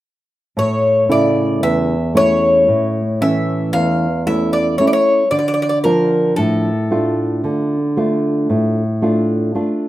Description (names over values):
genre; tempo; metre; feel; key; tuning
greek folk, Greek bouzouki band; 114 BPM (eighths); 9/8; straight; unclear; A4 = 440 Hz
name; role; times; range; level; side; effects
Greek bouzouki; melody; 0.6-9.5 s; A4 to F5; -16 LUFS; left 1 dB; plate reverb
nylon-string guitar; accompaniment; 0.6-9.9 s; E2 to F4; -16 LUFS; right 1 dB; plate reverb
room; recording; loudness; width
wet studio reverb, RT60 0.6 s; rough home demo mix; -14 LUFS; side -15 dB against mid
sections
0.6-9.9 A section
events
none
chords
0.6 A; 5.3 Dm